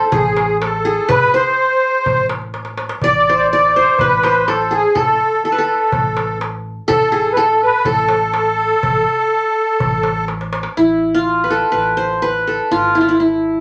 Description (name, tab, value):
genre	Arabic maqam ensemble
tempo	124 BPM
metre	4/4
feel	straight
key	A maqam nahawand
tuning	A4 = 439 Hz
part	qanun	melody	0.0-13.6 s	E4 to D5	-18 LUFS	equal	none
part	musette accordion	second line	0.0-10.2 s	G#4 to D5	-18 LUFS	equal	none
part	upright bass	bass	0.1-13.6 s	G#1 to A1	-30 LUFS	equal	none
part	darbuka	percussion	0.1-10.8 s	none	-25 LUFS	equal	none
room	wet studio ambience, RT60 0.5 s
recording	none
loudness	-15 LUFS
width	mono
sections	0.0-10.8 A section; 10.8-13.6 B section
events	drum fill 2.5-3.0, 10.3-10.8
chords	none